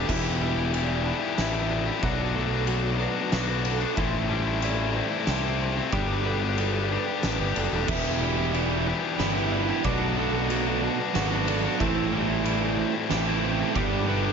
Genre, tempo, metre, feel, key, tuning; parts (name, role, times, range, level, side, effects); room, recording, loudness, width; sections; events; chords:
post-rock; 92 BPM; 3/4; straight; E minor; A4 = 440 Hz
pedal steel guitar; sustained chords; 0.0-14.3 s; G4 to E6; -42 LUFS; right 5 dB
twelve-string electric guitar; arpeggios; 0.0-14.3 s; E2 to G4; -34 LUFS; right 1 dB; tape echo
vibraphone with hard mallets; arpeggios; 0.0-14.3 s; A4 to E5; -36 LUFS; right 11 dB; tape echo
tight distorted guitar; riff; 0.0-14.3 s; A2 to G4; -28 LUFS; left 9 dB; distortion
fuzz fingered electric bass; bass; 0.0-14.3 s; E1 to C2; -29 LUFS; equal; overdrive
oversized low-tuned drum kit; drums; 0.1-13.9 s; crash cymbal, kick drum, ride cymbal, snare drum; -31 LUFS; equal
distorted electric guitar; riff; 7.9-14.3 s; G2 to G4; -29 LUFS; right 15 dB; distortion
light reverb, small room ambience; nothing above 7.5 kHz; -23 LUFS; side -6 dB against mid
0.0-14.3 A section
0.1 Em7; 2.0 Bm7; 4.0 Am7; 5.9 Gmaj7; 7.9 Em7; 9.8 Bm7; 11.8 Am7; 13.7 Gmaj7